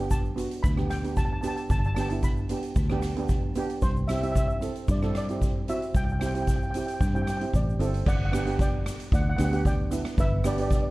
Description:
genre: calypso.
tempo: 113 BPM.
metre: 4/4.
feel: straight.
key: G major.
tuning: A4 = 440 Hz.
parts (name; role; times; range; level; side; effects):
steel pan; melody; 0.0-10.9 s; G4 to B5; -34 LUFS; equal; tape echo.
steel pan; accompaniment; 0.0-10.9 s; B3 to A4; -31 LUFS; right 3 dB; none.
fingered electric bass; bass; 0.0-10.9 s; G1 to G2; -29 LUFS; equal; none.
street-band drum kit; drums; 0.1-10.8 s; crash cymbal, hi-hat, kick drum, rim click; -27 LUFS; equal; none.
tube shaker; percussion; 0.1-10.8 s; none; -49 LUFS; left 7 dB; none.
room: light reverb.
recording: dark, warm production.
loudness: -24 LUFS.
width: side -19 dB against mid.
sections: 0.0-8.1 A section; 8.1-10.9 B section.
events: none.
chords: 0.0 Gadd9; 3.8 Cadd9; 8.1 G.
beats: 0.11 0.64 1.17 | 1.70 2.23 2.76 3.29 | 3.82 4.35 4.88 5.42 | 5.95 6.48 7.00 7.54 | 8.06 8.59 9.12 9.65 | 10.18 10.71.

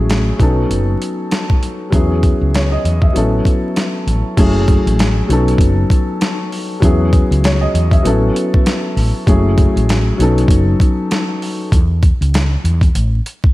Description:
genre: hip hop, boom-bap hip-hop.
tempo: 98 BPM.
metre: 4/4.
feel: swing 59% on 16ths.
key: unclear.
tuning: A4 = 440 Hz.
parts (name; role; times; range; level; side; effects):
dark upright piano; accompaniment; 0.0-11.7 s; F#3 to E5; -17 LUFS; left 1 dB; high-pass filter, low-pass filter.
woody fretless electric bass; bass; 0.0-13.2 s; F#1 to E2; -15 LUFS; equal; none.
dusty soul sampler-style drum kit; drums; 0.1-13.5 s; crash cymbal, hi-hat, kick drum, snare drum; -15 LUFS; equal; overdrive.
room: light reverb.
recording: vinyl crackle.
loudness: -12 LUFS.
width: side -18 dB against mid.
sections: 0.0-4.4 A section; 4.4-13.5 B section.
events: none.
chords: 0.4 B7; 1.9 E6; 3.2 A6; 4.4 F#m7; 5.3 B7; 6.8 E6; 8.0 A6; 9.3 F#m7; 10.2 B7; 11.7 C#m; 12.9 N.C..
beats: 0.09 0.70 1.31 | 1.93 2.54 3.15 3.76 | 4.38 4.99 5.60 6.21 | 6.82 7.44 8.05 8.66 | 9.27 9.88 10.50 11.11 | 11.72 12.33 12.95.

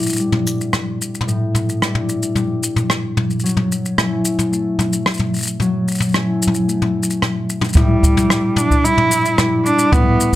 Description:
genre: folktronica.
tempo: 111 BPM.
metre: 4/4.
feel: straight.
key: A mixolydian.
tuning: A4 = 440 Hz.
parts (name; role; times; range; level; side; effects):
concert harp; arpeggios; 0.0-10.4 s; A2 to E4; -19 LUFS; left 2 dB; low-pass filter, tape echo.
jazz brush drum kit; drums; 0.0-10.3 s; rim click, shaker, toms; -19 LUFS; equal; none.
rich cello; melody; 7.8-10.4 s; G3 to E4; -16 LUFS; right 2 dB; tape echo.
kick drum; drums; 7.8-10.4 s; none; -15 LUFS; equal; none.
room: light reverb.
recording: none.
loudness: -15 LUFS.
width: side -14 dB against mid.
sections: 0.0-7.8 A section; 7.8-10.4 B section.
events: none.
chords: 0.0 A7sus4; 3.4 F#m7; 7.8 A7sus4.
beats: 0.20 0.73 | 1.28 1.82 2.36 2.90 | 3.44 3.98 4.52 5.06 | 5.60 6.14 6.68 7.22 | 7.76 8.30 8.84 9.38 | 9.92.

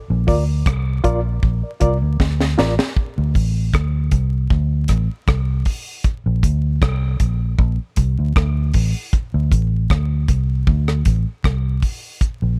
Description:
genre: roots reggae.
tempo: 78 BPM.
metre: 4/4.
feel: straight.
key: D minor.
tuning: A4 = 440 Hz.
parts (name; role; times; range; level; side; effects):
vintage muted fingered electric bass; bass; 0.1-12.6 s; A1 to D2; -20 LUFS; equal; none.
reed electric piano; stabs; 0.3-2.7 s; F4 to D5; -25 LUFS; equal; fast tremolo.
deep reggae drum kit; drums; 0.3-12.4 s; hi-hat, kick drum, rim click, snare drum; -21 LUFS; equal; none.
room: little or no reverb.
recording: vinyl crackle.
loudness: -19 LUFS.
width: mono.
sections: 0.0-3.0 A section; 3.0-12.6 B section.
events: drum fill 2.2-3.0.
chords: 0.0 Bb; 3.0 D5; 6.1 Bb; 9.1 D5.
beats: 0.66 1.43 2.20 | 2.97 3.74 4.51 5.28 | 6.05 6.82 7.59 8.36 | 9.13 9.90 10.67 11.44 | 12.21.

